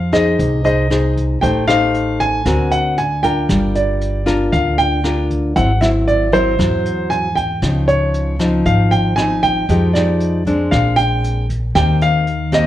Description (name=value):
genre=bossa nova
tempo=116 BPM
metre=4/4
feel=straight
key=unclear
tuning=A4 = 440 Hz
part: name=warm grand piano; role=melody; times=0.0-12.7 s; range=C5 to Ab5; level=-18 LUFS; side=right 1 dB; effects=none
part: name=nylon-string guitar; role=accompaniment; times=0.0-12.7 s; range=Ab2 to C5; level=-17 LUFS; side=left 2 dB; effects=none
part: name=upright bass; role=bass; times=0.0-12.7 s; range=G1 to F2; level=-20 LUFS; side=equal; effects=none
part: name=jazz brush drum kit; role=drums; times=0.1-12.6 s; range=hi-hat, kick drum, rim click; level=-25 LUFS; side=right 1 dB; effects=none
room=light reverb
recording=none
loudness=-13 LUFS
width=side -13 dB against mid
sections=0.0-12.7 A section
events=none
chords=0.0 Fm7; 1.4 Am7b5; 2.5 D7alt; 3.5 Gm7; 5.6 Abaug7; 7.6 Dbmaj9; 9.7 Fm9; 10.7 Bb9; 11.7 Eb6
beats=0.39 0.91 | 1.42 1.94 2.46 2.97 | 3.49 4.01 4.52 5.04 | 5.55 6.07 6.59 7.10 | 7.62 8.13 8.65 9.17 | 9.68 10.20 10.71 11.23 | 11.75 12.26